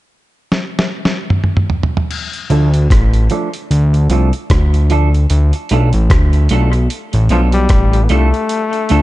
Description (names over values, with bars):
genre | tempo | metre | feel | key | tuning
dub reggae | 75 BPM | 4/4 | swing 58% on 16ths | D dorian | A4 = 439 Hz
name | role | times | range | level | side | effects
dusty soul sampler-style drum kit | drums | 0.5-9.0 s | crash cymbal, hi-hat, kick drum, rim click, snare drum, toms | -16 LUFS | equal | none
clean electric guitar | accompaniment | 2.5-9.0 s | F3 to A4 | -20 LUFS | right 4 dB | low-pass filter, dub echo
fat analog bass | bass | 2.5-9.0 s | A1 to D2 | -11 LUFS | equal | none
clear trombone | melody | 7.3-9.0 s | F3 to B3 | -17 LUFS | left 4 dB | dub echo
room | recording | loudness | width
little or no reverb | dark, warm production, nothing above 11.0 kHz | -11 LUFS | side -17 dB against mid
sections
0.0-2.1 A section; 2.1-8.5 B section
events
drum fill 0.5-2.1; filter sweep on clean electric guitar 2.1-8.5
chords
0.0 N.C.; 2.1 Dm